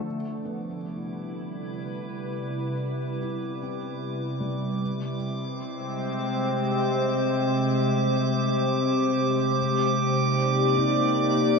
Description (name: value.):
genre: ambient.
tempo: free time.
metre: none.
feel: none.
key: C major.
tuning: A4 = 441 Hz.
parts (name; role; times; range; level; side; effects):
glassy FM pad; sustained chords; 0.0-11.6 s; C3 to D5; -25 LUFS; left 1 dB; ensemble chorus, built-in reverb.
felt-muted upright piano; arpeggios; 0.0-11.6 s; G3 to E4; -37 LUFS; right 2 dB; ping-pong delay.
drifting glass-harmonics texture; texture; 0.9-11.6 s; D6; -31 LUFS; right 8 dB; chorus, built-in reverb.
room: wet cathedral reverb, RT60 5.4 s.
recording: worn, warbling old tape, cassette tape, warbly pitch drift.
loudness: -24 LUFS.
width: side -4 dB against mid.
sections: 0.1-11.6 A section.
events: fade-in on ambient pad 0.1-11.6; fade-in on felt piano 0.1-11.6; fade-in on synth texture 0.1-11.6.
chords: 0.1 Cmaj7; 4.8 Abmaj7; 9.6 Ebmaj7.